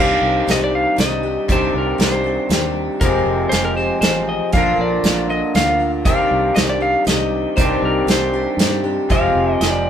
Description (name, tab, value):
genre	folk rock and heartland rock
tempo	118 BPM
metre	3/4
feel	straight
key	C minor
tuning	A4 = 440 Hz
part	clean lap steel guitar	melody	0.0-9.9 s	Bb4 to F5	-20 LUFS	equal	none
part	picked twelve-string acoustic guitar	accompaniment	0.0-9.9 s	F2 to G4	-23 LUFS	left 6 dB	none
part	electric guitar through a small old amp	riff	0.0-9.9 s	F2 to G4	-21 LUFS	right 2 dB	none
part	fingered electric bass	bass	0.0-9.9 s	F1 to G2	-25 LUFS	equal	none
part	unplugged drum kit	drums	0.5-9.7 s	hi-hat, kick drum, snare drum	-19 LUFS	right 1 dB	none
room	moderate studio reverb, RT60 0.6 s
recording	band playing live in one room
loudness	-15 LUFS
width	side -9 dB against mid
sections	0.0-9.9 A section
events	none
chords	0.0 Cmadd9; 3.0 Fmadd9; 4.5 Bb; 6.1 Cmadd9; 9.1 Fmadd9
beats	0.48 0.99 | 1.49 2.00 2.50 | 3.01 3.52 4.03 | 4.53 5.04 5.55 | 6.06 6.57 7.08 | 7.58 8.09 8.60 | 9.11 9.62